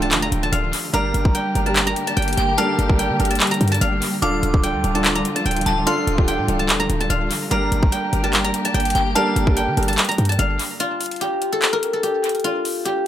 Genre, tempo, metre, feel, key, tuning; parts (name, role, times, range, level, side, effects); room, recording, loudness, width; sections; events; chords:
hip hop, trap; 146 BPM; 4/4; half-time; G minor; A4 = 440 Hz
guzheng; melody; 0.0-13.1 s; F4 to Bb5; -23 LUFS; left 1 dB; tape echo
felt-muted upright piano; accompaniment; 0.0-10.8 s; D3 to Bb4; -25 LUFS; right 2 dB; tape echo
warm studio string section; sustained chords; 0.0-10.8 s; D3 to G4; -26 LUFS; left 2 dB
short 808-style bass; bass; 0.0-10.6 s; C1 to D3; -22 LUFS; equal
trap drum kit; drums; 0.1-13.0 s; handclaps, hi-hat, kick drum; -22 LUFS; equal; tape echo
glassy synth bell; second line; 0.9-9.5 s; G5 to D6; -28 LUFS; equal; chorus, tape echo
light reverb, studio ambience; echo-heavy mix; -17 LUFS; side -11 dB against mid
0.0-10.8 A section; 10.8-13.1 B section
break 10.8-13.1
0.0 Dm; 0.9 Gmadd9; 4.2 Dm; 7.5 Gmadd9; 10.8 N.C.